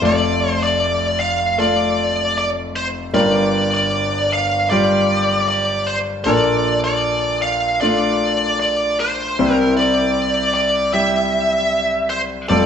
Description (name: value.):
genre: pop.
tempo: 77 BPM.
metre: 4/4.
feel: straight.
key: F major.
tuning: A4 = 440 Hz.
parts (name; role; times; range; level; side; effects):
bluesy overdriven lead guitar; melody; 0.0-12.7 s; C5 to F5; -18 LUFS; right 1 dB; distortion.
clear grand piano; accompaniment; 0.0-12.7 s; F1 to F5; -19 LUFS; left 1 dB; none.
room: wet stone room reverb, RT60 1.3 s.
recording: band playing live in one room.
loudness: -15 LUFS.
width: side -8 dB against mid.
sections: 0.0-12.7 A section.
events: none.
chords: 0.0 F6; 3.1 Gm7; 6.3 Bbmaj7; 9.4 C.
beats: | 0.03 0.81 1.59 2.37 | 3.15 3.93 4.71 5.49 | 6.27 7.04 7.82 8.60 | 9.38 10.16 10.94 11.72 | 12.50.